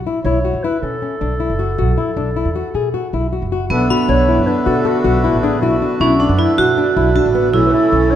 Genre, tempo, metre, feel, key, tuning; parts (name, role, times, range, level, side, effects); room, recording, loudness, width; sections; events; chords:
contemporary instrumental, chamber music in an uneven meter; 156 BPM; 5/4; straight; B minor; A4 = 440 Hz
upright bass; bass; 0.0-8.2 s; F#1 to B2; -20 LUFS; right 2 dB
nylon-string guitar; arpeggios; 0.1-8.2 s; A3 to A4; -19 LUFS; left 5 dB
dark clarinet; melody; 0.2-8.2 s; F#4 to C#5; -21 LUFS; left 2 dB
vibraphone with hard mallets; second line; 3.7-8.2 s; B3 to F#4; -16 LUFS; right 4 dB
hand-pumped harmonium; sustained chords; 3.7-8.2 s; D3 to C#4; -22 LUFS; equal
glockenspiel with brass mallets; texture; 3.9-5.0 s; B5; -27 LUFS; left 6 dB
moderate concert hall reverb, RT60 1.8 s; minimal, uncompressed stereo recording; -13 LUFS; side -10 dB against mid
0.0-3.7 A section; 3.7-8.2 A section
0.0 A5; 3.7 Bm7; 7.5 A